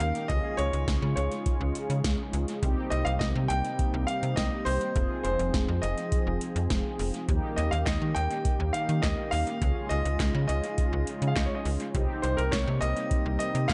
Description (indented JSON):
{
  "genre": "synth-pop",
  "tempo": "103 BPM",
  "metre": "4/4",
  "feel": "straight",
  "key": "unclear",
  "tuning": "A4 = 440 Hz",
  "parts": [
    { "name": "bright concert grand piano", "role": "melody", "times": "0.0-13.7 s", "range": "Bb4 to G5", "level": "-34 LUFS", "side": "equal", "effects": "dub echo" },
    { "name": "mellow synth brass", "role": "accompaniment", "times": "0.0-13.7 s", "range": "Bb3 to Ab4", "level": "-38 LUFS", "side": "equal", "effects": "chorus" },
    { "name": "lush unison pad", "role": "sustained chords", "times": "0.0-13.7 s", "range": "C3 to Ab4", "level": "-39 LUFS", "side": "equal", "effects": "chorus" },
    { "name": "slap-like FM bass", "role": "bass", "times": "0.0-13.7 s", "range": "F1 to Eb3", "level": "-31 LUFS", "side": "equal", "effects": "none" },
    { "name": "electro analog drum machine", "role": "drums", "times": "0.0-13.7 s", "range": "handclaps, hi-hat, kick drum, snare drum", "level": "-33 LUFS", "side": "equal", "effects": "overdrive, dub echo" }
  ],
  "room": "moderate spring reverb, RT60 1.5 s",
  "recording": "echo-heavy mix, nothing above 10.6 kHz",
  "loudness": "-28 LUFS",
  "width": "mono",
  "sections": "0.0-13.7 A section",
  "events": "none",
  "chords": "0.3 Dbadd9; 2.6 Cm7; 5.0 Fm7; 7.3 Eb7; 9.6 Dbadd9; 11.9 Cm7"
}